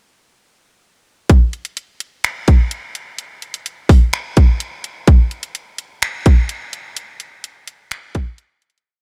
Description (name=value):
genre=hip hop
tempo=127 BPM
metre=4/4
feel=half-time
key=none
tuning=none
part: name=trap drum kit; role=drums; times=1.3-8.8 s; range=finger snaps, hi-hat, kick drum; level=-15 LUFS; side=equal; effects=none
room=little or no reverb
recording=none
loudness=-16 LUFS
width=mono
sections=1.3-8.9 verse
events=fade-out 7.0-8.9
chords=none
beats=| 1.30 1.77 2.24 2.71 | 3.19 3.66 4.13 4.60 | 5.08 5.55 6.02 6.49 | 6.97 7.44 7.91 8.38